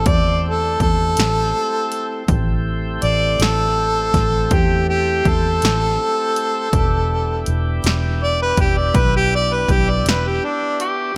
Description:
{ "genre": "slow blues", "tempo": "54 BPM (dotted quarters)", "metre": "12/8", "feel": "straight", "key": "unclear", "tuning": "A4 = 439 Hz", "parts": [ { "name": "warm harmonica", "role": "melody", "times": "0.0-10.8 s", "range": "D4 to D5", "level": "-21 LUFS", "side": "equal", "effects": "overdrive" }, { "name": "tonewheel organ", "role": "sustained chords", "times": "0.0-11.2 s", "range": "A3 to G4", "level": "-30 LUFS", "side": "equal", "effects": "slow rotary speaker" }, { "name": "vintage muted fingered electric bass", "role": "bass", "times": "0.0-10.4 s", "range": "E1 to E2", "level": "-22 LUFS", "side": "equal", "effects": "none" }, { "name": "punchy analog drum machine", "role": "drums", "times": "0.1-11.0 s", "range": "hi-hat, kick drum, snare drum", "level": "-22 LUFS", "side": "equal", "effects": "none" }, { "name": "breathy tenor saxophone", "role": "second line", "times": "10.8-11.2 s", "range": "G4", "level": "-23 LUFS", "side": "equal", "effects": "slapback echo" } ], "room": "light reverb", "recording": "none", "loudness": "-18 LUFS", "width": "mono", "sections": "0.0-11.2 A section", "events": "none", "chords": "0.0 Am7; 6.7 Em7", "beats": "0.06 1.17 | 2.28 3.39 4.50 5.62 | 6.72 7.83 8.94 10.05 | 11.16" }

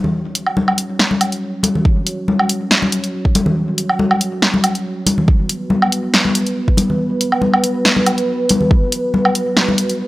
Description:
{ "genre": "deep dubstep", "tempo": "140 BPM", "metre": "4/4", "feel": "swing 53% on 16ths, half-time", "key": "unclear", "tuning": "A4 = 440 Hz", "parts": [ { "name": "dark analog pad", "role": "sustained chords", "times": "0.0-10.1 s", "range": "F#4 to C#5", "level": "-22 LUFS", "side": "right 1 dB", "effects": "chorus" }, { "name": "congas", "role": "percussion", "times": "0.0-9.8 s", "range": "none", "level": "-18 LUFS", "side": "left 2 dB", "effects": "dub echo" }, { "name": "deep house drum kit", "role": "drums", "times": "0.4-10.0 s", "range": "hi-hat, snare drum, woodblock", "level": "-15 LUFS", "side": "right 1 dB", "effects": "none" }, { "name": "electronic kick drum", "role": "drums", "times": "1.9-8.8 s", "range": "none", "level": "-13 LUFS", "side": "equal", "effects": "none" } ], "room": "light reverb", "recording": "dry, gritty hardware recording", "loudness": "-14 LUFS", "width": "side -18 dB against mid", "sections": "0.0-10.1 A section", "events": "build-up 0.0-10.1; filter sweep on analog synth pad 0.0-10.1", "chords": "0.0 F#5", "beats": "| 0.14 0.57 0.99 1.42 | 1.85 2.28 2.71 3.14 | 3.57 4.00 4.42 4.85 | 5.28 5.71 6.14 6.57 | 7.00 7.42 7.85 8.28 | 8.71 9.14 9.57 9.99" }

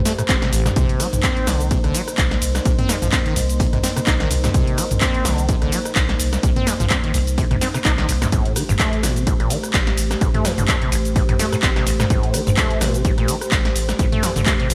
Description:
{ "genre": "acid house", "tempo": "127 BPM", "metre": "4/4", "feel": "swing 56% on 16ths", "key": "A phrygian", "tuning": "A4 = 436 Hz", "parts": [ { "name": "dark analog pad", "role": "sustained chords", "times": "0.0-14.7 s", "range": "A3 to C5", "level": "-29 LUFS", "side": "equal", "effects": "chorus, vintage 12-bit sampler grit, sidechain pumping" }, { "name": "warm sub bass", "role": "bass", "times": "0.0-14.7 s", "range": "G1 to C2", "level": "-26 LUFS", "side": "equal", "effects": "sidechain pumping" }, { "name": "acid bass, saw", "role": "riff", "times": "0.1-14.7 s", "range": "A1 to Eb4", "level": "-27 LUFS", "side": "equal", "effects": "overdrive, lush chorus, delay" }, { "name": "punchy analog drum machine", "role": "drums", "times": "0.1-14.7 s", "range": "cabasa, handclaps, hi-hat, ride cymbal, rim click, snare drum, toms", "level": "-24 LUFS", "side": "equal", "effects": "gated reverb" }, { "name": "electronic kick drum", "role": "drums", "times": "0.3-14.6 s", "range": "none", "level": "-23 LUFS", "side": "equal", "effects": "none" } ], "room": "light reverb, digital ambience", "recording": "bright 1980s-style digital production", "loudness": "-19 LUFS", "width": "mono", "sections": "0.0-14.7 A section", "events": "none", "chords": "0.0 Am7; 0.8 Cm7; 8.3 Am7", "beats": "0.29 | 0.76 1.24 1.71 2.18 | 2.65 3.13 3.60 4.07 | 4.54 5.01 5.49 5.96 | 6.43 6.91 7.38 7.85 | 8.32 8.79 9.27 9.74 | 10.21 10.69 11.16 11.63 | 12.10 12.57 13.05 13.52 | 13.99 14.46" }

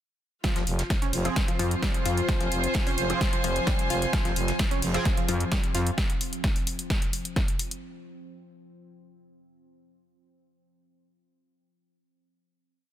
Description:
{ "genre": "driving peak-time techno", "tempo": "130 BPM", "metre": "4/4", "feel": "straight", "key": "F minor", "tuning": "A4 = 441 Hz", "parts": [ { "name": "analog pluck", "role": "riff", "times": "0.4-5.8 s", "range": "F3 to F4", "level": "-33 LUFS", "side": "left 1 dB", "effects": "chorus, sidechain pumping, dub echo" }, { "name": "deep dark ambient pad", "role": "drone", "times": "1.6-6.0 s", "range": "F3 to C4", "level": "-37 LUFS", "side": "left 1 dB", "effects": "chorus, built-in reverb, sidechain pumping" }, { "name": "electronic kick drum", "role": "drums", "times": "0.4-7.5 s", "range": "none", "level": "-28 LUFS", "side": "equal", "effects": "none" }, { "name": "punchy analog drum machine", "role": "drums", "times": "0.4-7.8 s", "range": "hi-hat, snare drum", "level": "-32 LUFS", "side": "equal", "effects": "overdrive" }, { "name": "soft brush drum kit", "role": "drums", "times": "0.4-5.9 s", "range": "hi-hat, snare drum", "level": "-41 LUFS", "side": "right 3 dB", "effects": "none" }, { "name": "clear studio string section", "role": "texture", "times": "0.4-6.0 s", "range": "F4 to Ab5", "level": "-32 LUFS", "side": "right 1 dB", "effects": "sidechain pumping" }, { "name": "growling FM bass", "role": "bass", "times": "0.6-5.9 s", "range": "F1 to F2", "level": "-28 LUFS", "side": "equal", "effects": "sidechain pumping" }, { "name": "sync-sweep polysynth", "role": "stabs", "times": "1.3-5.1 s", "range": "F3 to Ab4", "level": "-35 LUFS", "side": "right 5 dB", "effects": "chorus, phaser, vintage 12-bit sampler grit, sidechain pumping, dub echo" } ], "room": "light reverb, small room ambience", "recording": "dense, heavily limited modern master", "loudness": "-24 LUFS", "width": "side -11 dB against mid", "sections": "0.4-7.8 drop", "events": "drop 0.4-7.8", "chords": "0.4 Fm", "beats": "| 0.44 0.90 1.36 1.82 | 2.29 2.75 3.21 3.67 | 4.13 4.59 5.06 5.52 | 5.98 6.44 6.90 7.36" }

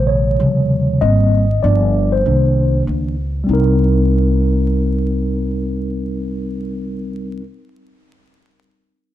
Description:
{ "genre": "hip hop, jazz-hop", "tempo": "97 BPM", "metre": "4/4", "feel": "swing 60% on 16ths", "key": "C minor", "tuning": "A4 = 440 Hz", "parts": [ { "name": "mellow tine electric piano", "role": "accompaniment", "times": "0.0-7.4 s", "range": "C3 to Eb5", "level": "-17 LUFS", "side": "equal", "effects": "medium stereo tremolo" }, { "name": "upright bass", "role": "bass", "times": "0.0-7.4 s", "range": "G1 to Eb2", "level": "-17 LUFS", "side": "equal", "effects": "none" } ], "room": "light reverb, studio ambience", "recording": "vinyl crackle", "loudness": "-14 LUFS", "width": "side -13 dB against mid", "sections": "0.0-3.5 A section; 3.5-6.0 B section", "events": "tine electric piano solo 0.0-3.5", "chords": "0.4 Eb13; 1.0 Abmaj9; 1.6 G7; 2.2 Cm7", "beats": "0.39 | 1.01 1.63 2.24 2.86 | 3.48 4.10 4.72 5.34" }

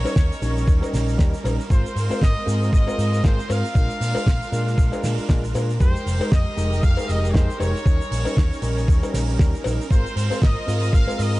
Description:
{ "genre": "nu-disco, nu disco", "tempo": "117 BPM", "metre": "4/4", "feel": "swing 56% on 16ths", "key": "unclear", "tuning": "A4 = 440 Hz", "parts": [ { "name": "brilliant trumpet section", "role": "melody", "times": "0.0-11.4 s", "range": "C5 to F5", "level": "-30 LUFS", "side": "equal", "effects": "tape echo" }, { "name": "overdriven reed electric piano", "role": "accompaniment", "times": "0.0-11.4 s", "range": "G3 to Bb4", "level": "-29 LUFS", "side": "equal", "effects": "sidechain pumping" }, { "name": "rich symphonic string section", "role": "sustained chords", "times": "0.0-11.4 s", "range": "G3 to Bb4", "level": "-32 LUFS", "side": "right 3 dB", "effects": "sidechain pumping" }, { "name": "picked electric bass", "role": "bass", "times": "0.0-11.4 s", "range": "F1 to Bb2", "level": "-23 LUFS", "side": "equal", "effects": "none" }, { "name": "damped 70s drum kit", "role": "drums", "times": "0.1-11.4 s", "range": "hi-hat, shaker, snare drum", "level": "-29 LUFS", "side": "right 1 dB", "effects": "small room ambience" }, { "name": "cowbell", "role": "percussion", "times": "0.1-11.2 s", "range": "none", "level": "-31 LUFS", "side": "left 5 dB", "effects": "none" }, { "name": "electronic kick drum", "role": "drums", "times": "0.2-11.0 s", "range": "none", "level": "-18 LUFS", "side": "equal", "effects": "small room ambience" } ], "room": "small room ambience", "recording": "dark, warm production, nothing above 10.4 kHz", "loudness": "-18 LUFS", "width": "side -19 dB against mid", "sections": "0.0-11.4 A section", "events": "none", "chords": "0.0 Eb7; 1.7 Ab69; 3.8 Bb7; 5.8 Fm11; 7.9 Eb7; 9.9 Ab69", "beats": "0.16 0.68 1.19 | 1.70 2.21 2.73 3.24 | 3.75 4.27 4.78 5.29 | 5.80 6.32 6.83 7.34 | 7.86 8.37 8.88 9.39 | 9.91 10.42 10.93" }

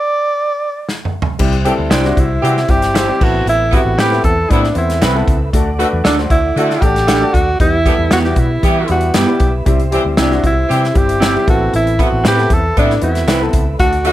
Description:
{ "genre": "uptempo 1960s-style soul", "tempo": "116 BPM", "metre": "4/4", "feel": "straight", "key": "unclear", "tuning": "A4 = 440 Hz", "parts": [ { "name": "breathy tenor saxophone", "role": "melody", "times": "0.0-14.1 s", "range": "D4 to D5", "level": "-16 LUFS", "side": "equal", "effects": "none" }, { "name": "natural country drum kit", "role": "drums", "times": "0.9-14.1 s", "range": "crash cymbal, hi-hat, kick drum, snare drum, toms", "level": "-16 LUFS", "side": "equal", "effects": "none" }, { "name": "warm upright piano", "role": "accompaniment", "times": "1.4-14.1 s", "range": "G3 to C5", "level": "-20 LUFS", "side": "left 2 dB", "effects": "none" }, { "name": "mellow tonewheel organ", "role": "sustained chords", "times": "1.4-14.1 s", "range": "G4 to D6", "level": "-27 LUFS", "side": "right 1 dB", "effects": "none" }, { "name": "vintage muted fingered electric bass", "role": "bass", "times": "1.4-14.1 s", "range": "G1 to E3", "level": "-18 LUFS", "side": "equal", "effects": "none" }, { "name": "warm horn section", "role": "second line", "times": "1.6-14.1 s", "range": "C3 to G4", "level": "-18 LUFS", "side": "right 1 dB", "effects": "none" }, { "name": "electric guitar through a small old amp", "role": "stabs", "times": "1.9-13.4 s", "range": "A3 to C5", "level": "-20 LUFS", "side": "right 3 dB", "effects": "spring reverb" } ], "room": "light reverb", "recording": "none", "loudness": "-11 LUFS", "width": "side -14 dB against mid", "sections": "0.0-1.4 A section; 1.4-14.1 B section", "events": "stop 0.0-1.4; drum fill 0.9-1.4", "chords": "0.4 N.C.; 1.4 C; 3.2 Amadd9; 5.5 D; 7.6 Em; 9.7 C; 11.5 Amadd9", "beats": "0.38 0.89 | 1.41 1.92 2.44 2.96 | 3.47 3.99 4.50 5.02 | 5.54 6.05 6.57 7.09 | 7.60 8.12 8.64 9.15 | 9.67 10.19 10.70 11.22 | 11.73 12.25 12.77 13.29 | 13.80" }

